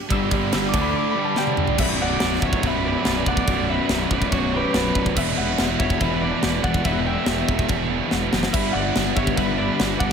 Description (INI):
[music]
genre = heavy metal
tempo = 142 BPM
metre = 4/4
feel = straight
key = B minor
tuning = A4 = 440 Hz
[part]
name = concert harp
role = melody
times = 0.0-10.1 s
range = B4 to E6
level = -28 LUFS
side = left 3 dB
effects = none
[part]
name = dark studio string section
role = sustained chords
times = 0.0-10.1 s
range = D3 to D5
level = -37 LUFS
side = right 1 dB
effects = none
[part]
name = distorted electric guitar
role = riff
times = 0.1-10.1 s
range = B1 to D4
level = -29 LUFS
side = left 15 dB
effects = distortion
[part]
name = raw garage guitar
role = riff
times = 0.1-10.1 s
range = B1 to D4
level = -27 LUFS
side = right 1 dB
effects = overdrive
[part]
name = scooped high-gain guitar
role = riff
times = 0.1-10.1 s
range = B1 to D4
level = -27 LUFS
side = right 14 dB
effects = distortion
[part]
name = fuzz picked electric bass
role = bass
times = 0.1-10.1 s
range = B0 to D2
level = -26 LUFS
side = equal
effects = overdrive
[part]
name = tight metal drum kit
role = drums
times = 0.1-10.1 s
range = china cymbal, crash cymbal, kick drum, ride cymbal, snare drum, splash cymbal, toms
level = -24 LUFS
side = equal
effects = none
[part]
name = high-gain lead guitar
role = second line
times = 1.8-10.1 s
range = F#4 to E5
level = -30 LUFS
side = right 4 dB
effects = distortion
[sound]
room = light reverb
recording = none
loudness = -19 LUFS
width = side -6 dB against mid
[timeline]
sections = 0.0-1.8 A section; 1.8-10.1 B section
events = harp solo 0.0-1.8; drum fill 1.4-1.8, 8.1-8.5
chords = 0.0 G5; 0.7 D5; 1.2 G5; 1.8 Bm; 5.2 Em; 8.5 G